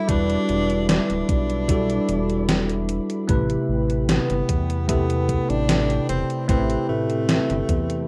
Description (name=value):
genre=vaporwave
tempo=75 BPM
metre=4/4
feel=straight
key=unclear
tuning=A4 = 440 Hz
part: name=breathy tenor saxophone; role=melody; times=0.0-8.1 s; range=A3 to E4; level=-30 LUFS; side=equal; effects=vintage 12-bit sampler grit, tape echo
part: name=bell-like tine electric piano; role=accompaniment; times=0.0-8.1 s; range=C3 to B4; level=-26 LUFS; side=equal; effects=analog chorus, vintage 12-bit sampler grit
part: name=warbly tape-like pad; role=sustained chords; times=0.0-8.1 s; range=G3 to D6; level=-42 LUFS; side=equal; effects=none
part: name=chorused synth bass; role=bass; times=0.1-8.1 s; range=D1 to E2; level=-28 LUFS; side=equal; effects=tube saturation
part: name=electronic kick drum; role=drums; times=0.1-7.9 s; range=none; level=-25 LUFS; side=equal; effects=none
part: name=gated 80s digital drum machine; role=drums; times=0.1-8.1 s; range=hi-hat, snare drum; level=-26 LUFS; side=equal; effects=gated reverb, gated reverb snare
room=moderate studio reverb, RT60 0.6 s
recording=rough home demo mix, cassette tape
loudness=-22 LUFS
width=mono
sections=0.0-8.1 A section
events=none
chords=0.0 Em7; 3.3 Am9